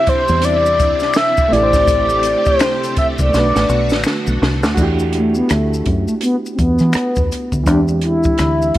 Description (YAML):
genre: R&B, neo-soul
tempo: 83 BPM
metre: 4/4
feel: swing 59% on 16ths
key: E minor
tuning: A4 = 440 Hz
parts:
  - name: mellow horn-like synth lead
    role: melody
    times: 0.0-8.8 s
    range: A3 to E5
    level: -16 LUFS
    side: left 1 dB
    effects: chorus, slapback echo
  - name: overdriven reed electric piano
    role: accompaniment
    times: 0.0-8.8 s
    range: E3 to C5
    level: -22 LUFS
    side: right 2 dB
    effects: fast tremolo
  - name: string machine, violins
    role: sustained chords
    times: 0.0-4.8 s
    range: C3 to G4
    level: -24 LUFS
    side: equal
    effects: ensemble chorus
  - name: deep dub fingered electric bass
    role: bass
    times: 0.1-8.8 s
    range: A1 to E3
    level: -18 LUFS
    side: equal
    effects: none
  - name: compact cocktail drum kit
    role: drums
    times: 0.1-8.8 s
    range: crash cymbal, hi-hat, kick drum, rim click, snare drum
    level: -20 LUFS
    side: equal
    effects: none
  - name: maracas and finger snaps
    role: percussion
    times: 0.3-8.7 s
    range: none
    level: -28 LUFS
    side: left 4 dB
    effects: none
room: light reverb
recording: vinyl crackle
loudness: -13 LUFS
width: side -14 dB against mid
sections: 0.0-4.8 A section; 4.8-8.8 B section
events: drum fill 3.3-4.8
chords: 0.0 C; 1.5 Am7; 3.3 Bm7; 4.8 Em11; 7.7 E7alt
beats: 0.43 1.16 | 1.88 2.60 3.32 4.05 | 4.77 5.49 6.22 6.94 | 7.66 8.38